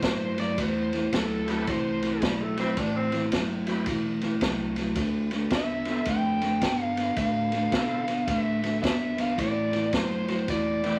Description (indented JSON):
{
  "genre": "electric blues shuffle",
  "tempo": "109 BPM",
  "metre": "4/4",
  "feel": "swing 64% on 8ths",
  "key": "A minor",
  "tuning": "A4 = 438 Hz",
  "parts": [
    { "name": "biting lead guitar", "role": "melody", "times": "0.0-2.2, 5.5-11.0 s", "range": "A4 to G5", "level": "-33 LUFS", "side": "equal", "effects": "overdrive" },
    { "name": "electric guitar through a small old amp", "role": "riff", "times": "0.0-11.0 s", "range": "A2 to B3", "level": "-30 LUFS", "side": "equal", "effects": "spring reverb" },
    { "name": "upright bass", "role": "bass", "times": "0.0-11.0 s", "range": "E1 to B2", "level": "-43 LUFS", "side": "equal", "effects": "none" },
    { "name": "vintage drum kit", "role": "drums", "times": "0.0-10.9 s", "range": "kick drum, ride cymbal, snare drum", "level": "-33 LUFS", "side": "equal", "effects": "none" },
    { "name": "bright tonewheel organ", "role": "accompaniment", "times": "1.5-11.0 s", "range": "C4 to B4", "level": "-40 LUFS", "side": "equal", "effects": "overdrive, chorus vibrato, fast rotary speaker" },
    { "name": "growling tenor saxophone", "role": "second line", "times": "2.2-3.3 s", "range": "G3 to D4", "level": "-33 LUFS", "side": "equal", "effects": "none" }
  ],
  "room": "moderate large studio reverb, RT60 1.0 s",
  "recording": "vinyl crackle",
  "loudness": "-27 LUFS",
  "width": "mono",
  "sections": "0.0-11.0 A section",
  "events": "none",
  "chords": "0.0 Am9; 5.0 Dm9; 9.4 Am9"
}